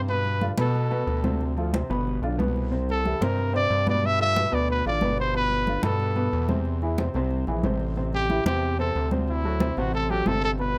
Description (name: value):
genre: Afro-Cuban jazz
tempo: 183 BPM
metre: 4/4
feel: straight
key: G mixolydian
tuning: A4 = 439 Hz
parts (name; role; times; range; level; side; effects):
- warm upright piano; accompaniment; 0.0-10.8 s; B2 to C5; -31 LUFS; equal; none
- gritty driven synth bass; bass; 0.0-10.8 s; G1 to B2; -29 LUFS; equal; none
- warm trumpet; melody; 0.1-10.8 s; E4 to E5; -28 LUFS; equal; none
- congas; percussion; 0.1-10.8 s; none; -33 LUFS; equal; none
room: light reverb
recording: close, detailed microphones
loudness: -25 LUFS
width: mono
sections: 0.0-10.8 A section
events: none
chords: 0.1 Gadd9; 1.4 Dm7; 2.1 G7; 2.7 C9; 4.0 G9; 6.7 Eaug; 8.0 Am7; 9.3 D9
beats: | 0.09 0.41 0.74 1.07 | 1.40 1.73 2.06 2.39 | 2.72 3.04 3.37 3.70 | 4.03 4.36 4.69 5.01 | 5.34 5.67 6.00 6.33 | 6.66 6.99 7.31 7.64 | 7.97 8.30 8.63 8.96 | 9.28 9.61 9.94 10.27 | 10.60